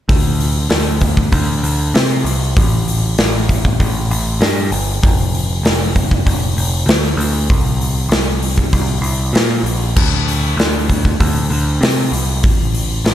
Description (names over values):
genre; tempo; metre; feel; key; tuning
rock, shoegaze and dream pop; 97 BPM; 4/4; straight; unclear; A4 = 440 Hz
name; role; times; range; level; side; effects
growling picked electric bass; bass; 0.1-13.1 s; F1 to C3; -17 LUFS; equal; overdrive
big rock drum kit; drums; 0.1-13.1 s; crash cymbal, hi-hat, kick drum, snare drum; -15 LUFS; equal; none
room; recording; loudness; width
little or no reverb; none; -13 LUFS; side -12 dB against mid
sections
0.1-13.1 A section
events
none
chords
none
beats
| 0.09 0.71 1.32 1.94 | 2.56 3.18 3.80 4.42 | 5.03 5.65 6.27 6.88 | 7.50 8.12 8.73 9.35 | 9.97 10.58 11.20 11.82 | 12.43 13.05